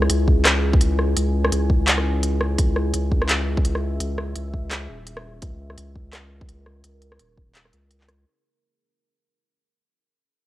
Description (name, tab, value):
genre	half-time drum and bass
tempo	169 BPM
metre	4/4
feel	swing 57% on 16ths, half-time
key	C# dorian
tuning	A4 = 440 Hz
part	deep dark ambient pad	sustained chords	0.0-8.3 s	C#4 to G#5	-29 LUFS	left 1 dB	chorus, built-in reverb, sidechain pumping, cassette tape
part	saturated sub bass	bass	0.0-8.3 s	D#1 to C#2	-23 LUFS	equal	none
part	organic electronic drum kit	drums	0.0-8.2 s	handclaps, hi-hat, rim click	-22 LUFS	equal	studio reverb
part	electronic kick drum	drums	0.3-7.5 s	none	-20 LUFS	equal	studio reverb
room	light reverb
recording	home recording on cassette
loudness	-19 LUFS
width	side -15 dB against mid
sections	0.0-8.3 A section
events	fade-out 0.0-8.3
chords	0.0 C#m